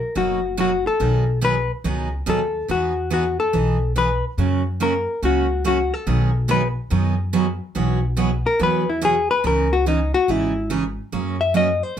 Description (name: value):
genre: country, western swing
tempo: 142 BPM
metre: 4/4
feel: swing 67% on 8ths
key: B major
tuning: A4 = 438 Hz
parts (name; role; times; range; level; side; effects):
- hollow-body jazz guitar; melody; 0.0-12.0 s; D#4 to E5; -20 LUFS; left 4 dB; none
- picked steel-string acoustic guitar; accompaniment; 0.2-12.0 s; B2 to G#4; -23 LUFS; right 5 dB; none
- upright bass; bass; 0.2-12.0 s; F#1 to F#2; -23 LUFS; equal; none
room: light reverb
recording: none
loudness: -18 LUFS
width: side -9 dB against mid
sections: 0.0-12.0 A section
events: hollow-body jazz guitar solo 0.0-12.0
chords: 0.0 Bmaj7; 1.0 G#m7/B; 2.7 Emaj7; 4.4 F#; 6.1 B6; 7.8 Eadd9/B; 9.4 C#madd9; 11.1 F#add9